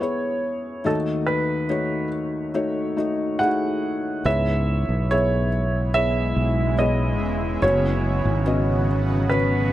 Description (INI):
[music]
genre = pop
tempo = 71 BPM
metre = 4/4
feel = straight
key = C# minor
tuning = A4 = 439 Hz
[part]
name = warm concert grand piano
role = melody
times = 0.0-9.7 s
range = A4 to F#5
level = -25 LUFS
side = right 2 dB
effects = none
[part]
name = felt-muted upright piano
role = accompaniment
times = 0.0-9.7 s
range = D#2 to E5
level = -25 LUFS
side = left 2 dB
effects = none
[part]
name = granular cloud pad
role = sustained chords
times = 5.5-9.7 s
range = C#3 to F#4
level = -28 LUFS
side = right 1 dB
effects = built-in reverb
[part]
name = fretless electric bass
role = bass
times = 4.3-9.7 s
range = E1 to C#2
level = -22 LUFS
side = equal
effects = none
[sound]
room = light reverb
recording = none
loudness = -20 LUFS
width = side -14 dB against mid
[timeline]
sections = 0.0-4.3 A section; 4.3-9.7 B section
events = none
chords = 0.0 C#m7/E; 0.9 D#dim; 4.3 C#m7; 7.6 F#sus4